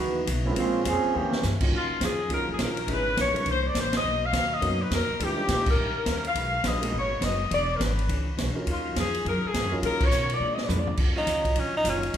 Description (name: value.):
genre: jazz, big band swing.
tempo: 207 BPM.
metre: 4/4.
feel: swing 62% on 8ths.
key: Eb minor.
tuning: A4 = 440 Hz.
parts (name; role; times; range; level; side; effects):
clear trombone section; second line; 0.0-1.4 s; D#3 to G#4; -26 LUFS; right 3 dB; none.
vintage hollow-body jazz guitar; accompaniment; 0.0-12.2 s; Bb2 to C#5; -36 LUFS; left 3 dB; none.
upright bass; bass; 0.0-12.2 s; E1 to Cb3; -30 LUFS; equal; none.
swinging big-band drum kit; drums; 0.3-12.2 s; crash cymbal, hi-hat, kick drum, ride cymbal, snare drum, toms; -30 LUFS; equal; none.
warm baby grand piano; accompaniment; 0.5-12.0 s; Fb3 to Cb5; -34 LUFS; right 2 dB; none.
clear saxophone section; melody; 1.8-10.9 s; F4 to F5; -27 LUFS; left 2 dB; none.
clear saxophone section; sustained chords; 11.1-11.5 s; Eb3 to F4; -37 LUFS; left 1 dB; none.
edgy tenor saxophone; melody; 11.2-12.2 s; Db4 to Eb4; -25 LUFS; right 1 dB; none.
room: wet recital hall reverb, RT60 1.4 s.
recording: recorded in a church or concert hall.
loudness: -23 LUFS.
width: side -9 dB against mid.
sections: 0.0-1.7 A section; 1.7-11.0 B section; 11.0-12.2 C section.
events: trombone section solo 0.0-1.7; drum fill 1.1, 10.4-11.0; band accent 3.9, 5.6, 10.0; tenor saxophone solo 11.0-12.2.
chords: 0.0 C#m11; 0.6 A#m9; 1.1 D#7b9; 1.7 Ebm9; 2.9 Dbm7; 3.5 C9; 4.0 Bmaj7; 5.2 Eb7b9; 6.4 Abm7; 7.5 E13; 8.7 Ebm9; 10.4 Bb7; 11.0 Ebm9.